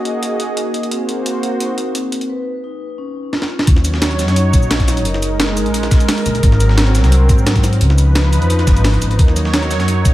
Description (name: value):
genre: liquid drum and bass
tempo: 174 BPM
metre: 4/4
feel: straight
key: Eb minor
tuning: A4 = 441 Hz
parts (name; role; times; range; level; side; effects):
- warm analog pad; sustained chords; 0.0-10.1 s; F3 to Eb5; -20 LUFS; right 1 dB; chorus
- vibraphone with medium mallets; arpeggios; 0.0-10.1 s; C4 to Db5; -25 LUFS; left 2 dB; diffuse ambient delay
- breakbeat sampler-style drum kit; drums; 0.1-10.1 s; cabasa, hi-hat, snare drum; -22 LUFS; right 1 dB; small room ambience
- upright bass; bass; 3.7-10.1 s; Gb1 to Ab2; -14 LUFS; equal; none
- breakbeat sampler-style drum kit; drums; 3.7-10.1 s; hi-hat, snare drum; -25 LUFS; equal; high-pass filter on hats, small room ambience, high-pass filter on snare, high-pass filter on room
- electronic kick drum; drums; 3.7-10.1 s; none; -12 LUFS; equal; small room ambience
room: light reverb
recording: none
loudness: -12 LUFS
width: side -15 dB against mid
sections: 0.0-3.7 A section; 3.7-10.1 B section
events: filter sweep on drum 0.0-3.7; break 2.3-3.7; drum fill 3.3-3.7; drop 3.7-10.1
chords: 0.0 Gb69; 0.9 Ab9; 2.3 Dbadd9; 3.7 Ebm7; 5.1 Gb69; 6.4 Ab9; 7.8 Db9; 9.2 Ebm7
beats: 0.22 0.57 | 0.91 1.26 1.60 1.95 | 2.29 2.64 2.98 3.33 | 3.67 4.02 4.36 4.71 | 5.05 5.40 5.74 6.09 | 6.43 6.78 7.12 7.47 | 7.81 8.15 8.50 8.85 | 9.19 9.54 9.88